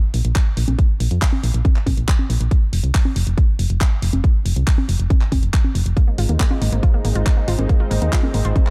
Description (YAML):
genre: uplifting trance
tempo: 139 BPM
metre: 4/4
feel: straight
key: unclear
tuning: A4 = 440 Hz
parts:
  - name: solid FM bass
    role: bass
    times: 0.1-8.5 s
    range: F1 to F2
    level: -21 LUFS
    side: equal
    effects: sidechain pumping
  - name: house drum kit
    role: drums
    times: 0.1-8.7 s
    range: congas, handclaps, hi-hat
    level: -29 LUFS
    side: equal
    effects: sidechain pumping on hats, sidechain pumping on cymbals, sidechain pumping on perc
  - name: electronic kick drum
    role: drums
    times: 0.4-8.6 s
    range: none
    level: -18 LUFS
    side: equal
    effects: none
  - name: lush unison pad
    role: sustained chords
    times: 6.0-8.7 s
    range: Ab3 to Eb4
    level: -30 LUFS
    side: equal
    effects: chorus, sidechain pumping
  - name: unison pluck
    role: arpeggios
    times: 6.0-8.7 s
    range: Bb3 to F4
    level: -31 LUFS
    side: equal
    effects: phaser, sidechain pumping, dub echo
room: digital ambience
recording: dark, warm production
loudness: -18 LUFS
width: mono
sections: 0.0-8.7 A section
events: none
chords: 0.0 Bb5; 2.5 F5; 6.0 Ab